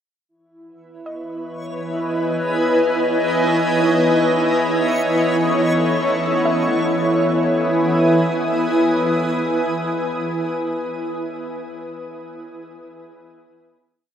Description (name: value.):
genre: ambient.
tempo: free time.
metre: none.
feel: none.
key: E major.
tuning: A4 = 442 Hz.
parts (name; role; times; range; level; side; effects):
granular cloud pad; sustained chords; 1.2-10.3 s; E4 to D#6; -18 LUFS; equal; built-in reverb, lush chorus.
organ-like drone; drone; 1.6-10.2 s; E3 to B3; -26 LUFS; equal; ensemble chorus, built-in reverb.
backwards swelling texture; texture; 1.6-6.5 s; C#5 to C#6; -30 LUFS; right 1 dB; built-in reverb.
soft round pluck; arpeggios; 1.1-10.2 s; D#5 to E5; -32 LUFS; equal; none.
room: wet huge ambient reverb, RT60 8.1 s.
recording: dreamy mix soaked in reverb.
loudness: -16 LUFS.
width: side -9 dB against mid.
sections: 0.3-6.4 A section; 6.4-9.5 final chord.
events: fade-in on synth drone 0.3-6.4; fade-in on synth texture 0.3-6.4.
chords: 0.3 Emaj7; 4.9 A6/E; 6.4 Emaj7.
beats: free time.